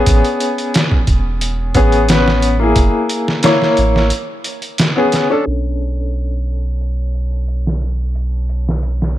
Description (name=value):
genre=trip hop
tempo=89 BPM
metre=4/4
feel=straight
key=B dorian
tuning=A4 = 439 Hz
part: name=clear upright piano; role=accompaniment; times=0.0-9.2 s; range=A#3 to C#5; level=-16 LUFS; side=left 2 dB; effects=tremolo, tape echo
part: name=soft dub sub bass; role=bass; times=0.1-9.2 s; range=E1 to B1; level=-17 LUFS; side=right 1 dB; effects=none
part: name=trip hop sampler-style drum kit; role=drums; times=0.1-9.2 s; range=hi-hat, kick drum, snare drum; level=-16 LUFS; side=right 1 dB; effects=low-pass filter on hats, low-pass filter on kick, low-pass filter on snare
room=light reverb, digital ambience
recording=low-pass filter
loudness=-13 LUFS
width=side -13 dB against mid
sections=0.0-5.5 A section; 5.5-9.2 B section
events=break 4.1-5.5; filter sweep 5.5-9.2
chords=0.1 Amaj7; 2.8 F#7 (rootless); 4.1 Amaj9; 5.5 Bm9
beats=| 0.07 0.74 1.42 2.09 | 2.77 3.44 4.12 4.79 | 5.46 6.14 6.81 7.49 | 8.16 8.83